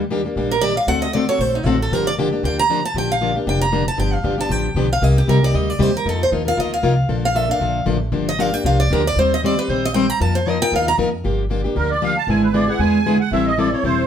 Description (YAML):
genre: acoustic string swing (jazz manouche)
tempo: 232 BPM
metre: 4/4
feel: swing 55% on 8ths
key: Bb major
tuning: A4 = 444 Hz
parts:
  - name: picked plugged-in steel-string acoustic guitar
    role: accompaniment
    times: 0.0-14.0 s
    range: C3 to C5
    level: -20 LUFS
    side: left 2 dB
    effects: none
  - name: upright bass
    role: bass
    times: 0.0-14.1 s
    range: E1 to F2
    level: -22 LUFS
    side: equal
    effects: none
  - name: picked steel-string acoustic guitar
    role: melody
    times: 0.5-10.9 s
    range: Eb4 to Bb5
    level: -20 LUFS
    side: right 2 dB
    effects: none
  - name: musette accordion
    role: second line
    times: 11.8-14.1 s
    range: Bb4 to A5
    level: -21 LUFS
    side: right 4 dB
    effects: none
room: moderate studio reverb, RT60 0.7 s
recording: band playing live in one room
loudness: -16 LUFS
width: side -9 dB against mid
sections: 0.0-2.9 A section; 2.9-11.2 A section; 11.2-14.1 A section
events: steel-string acoustic guitar solo 0.0-11.2; accordion solo 11.2-14.1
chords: 0.0 Ebmaj7; 0.9 D7b13; 1.9 Gm7; 2.9 Bb6; 4.0 G7; 5.0 Cm7; 6.1 F7sus4; 7.1 Bbmaj7; 8.1 Gm7; 9.2 Eb6; 10.2 F7sus4; 11.2 Gm7; 12.3 E7/G#; 13.3 Am7